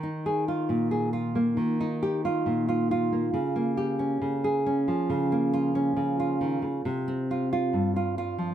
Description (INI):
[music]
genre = folk, solo fingerstyle acoustic guitar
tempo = 68 BPM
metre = 4/4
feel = straight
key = unclear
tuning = A4 = 441 Hz
[part]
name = nylon-string guitar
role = solo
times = 0.0-8.5 s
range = G2 to Ab4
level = -24 LUFS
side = right 1 dB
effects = none
[sound]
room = light reverb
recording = close, detailed microphones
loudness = -24 LUFS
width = side -10 dB against mid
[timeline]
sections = 0.0-8.5 A section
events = none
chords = 0.0 Ebsus2; 3.3 Bbm/Db; 6.9 Csus4